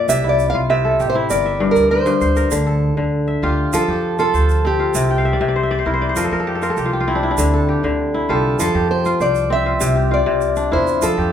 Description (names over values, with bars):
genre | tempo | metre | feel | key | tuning
west african traditional, West African string and xylophone music | 99 BPM | 4/4 | straight | F major | A4 = 437 Hz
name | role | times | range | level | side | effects
fingerpicked steel-string acoustic guitar | melody | 0.0-11.3 s | F4 to F5 | -18 LUFS | right 1 dB | none
kora | arpeggios | 0.0-11.3 s | G2 to G5 | -18 LUFS | left 2 dB | none
upright bass | bass | 0.0-11.3 s | G1 to F2 | -21 LUFS | right 1 dB | none
egg shaker | percussion | 0.1-11.2 s | none | -28 LUFS | right 9 dB | none
room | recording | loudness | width
wet large studio reverb, RT60 1.2 s | band playing live in one room | -15 LUFS | side -9 dB against mid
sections
0.0-2.5 A section; 2.5-11.3 B section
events
steel-string acoustic guitar solo 0.0-2.5; kora fill 5.1-7.4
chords
0.1 C; 1.3 Gm; 2.5 Dm; 3.7 F5; 4.9 C; 6.2 F5; 9.8 C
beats
| 0.09 0.70 1.30 1.91 | 2.52 3.12 3.73 4.34 | 4.94 5.55 6.16 6.77 | 7.37 7.98 8.59 9.20 | 9.81 10.41 11.02